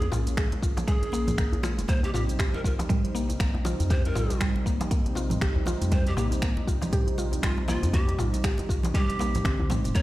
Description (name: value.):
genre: afro house.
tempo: 119 BPM.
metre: 4/4.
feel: swing 59% on 16ths.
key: unclear.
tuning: A4 = 441 Hz.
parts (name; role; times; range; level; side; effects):
breathy bright large pan pipes; melody; 0.0-10.0 s; F4 to Db5; -35 LUFS; right 1 dB; dub echo.
warm analog pad; sustained chords; 0.0-10.0 s; C3 to Eb4; -35 LUFS; equal; chorus, sidechain pumping.
round analog bass; bass; 0.0-9.9 s; F1 to F2; -30 LUFS; equal; sidechain pumping.
afro-pop drum kit; drums; 0.0-10.0 s; finger snaps, hi-hat, shaker, toms; -33 LUFS; equal; none.
djembe; percussion; 0.0-10.0 s; none; -35 LUFS; left 1 dB; none.
mallet-like synth pluck; arpeggios; 0.1-10.0 s; G3 to Ab4; -33 LUFS; equal; chorus, sidechain pumping, dub echo.
congas; percussion; 0.3-10.0 s; none; -35 LUFS; right 2 dB; none.
electronic kick drum; drums; 0.4-10.0 s; none; -26 LUFS; equal; none.
room: light reverb.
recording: played on a big sound system in a bare room, stone room reverb.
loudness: -24 LUFS.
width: side -16 dB against mid.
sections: 0.0-10.0 A section.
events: drum fill 9.2-10.0.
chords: 0.0 Bbm7; 1.9 Cm/Bb.